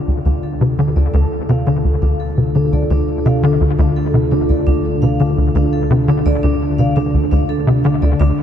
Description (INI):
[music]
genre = ambient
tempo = 85 BPM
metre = 4/4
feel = straight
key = D minor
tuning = A4 = 439 Hz
[part]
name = sweeping resonant pad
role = sustained chords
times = 0.0-8.4 s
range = D3 to A4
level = -19 LUFS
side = left 1 dB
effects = chorus
[part]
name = tight sequencer bass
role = riff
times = 0.0-8.3 s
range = D2 to D3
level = -15 LUFS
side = equal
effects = ensemble chorus, vintage 12-bit sampler grit, ping-pong delay
[part]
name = analog drone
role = bass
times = 0.1-8.4 s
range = D2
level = -24 LUFS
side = equal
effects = chorus
[part]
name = vibraphone with medium hard mallets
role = arpeggios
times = 0.3-8.3 s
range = D4 to F5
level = -28 LUFS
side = moving between left 4 dB and right 3 dB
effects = auto-pan, ping-pong delay
[sound]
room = moderate huge ambient reverb, RT60 7.5 s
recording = dreamy mix soaked in reverb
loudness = -13 LUFS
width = side -9 dB against mid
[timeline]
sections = 0.0-8.4 A section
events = fade-in on vibraphone 0.0-8.4; fade-in on analog synth pad 0.0-8.4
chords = 0.0 Dm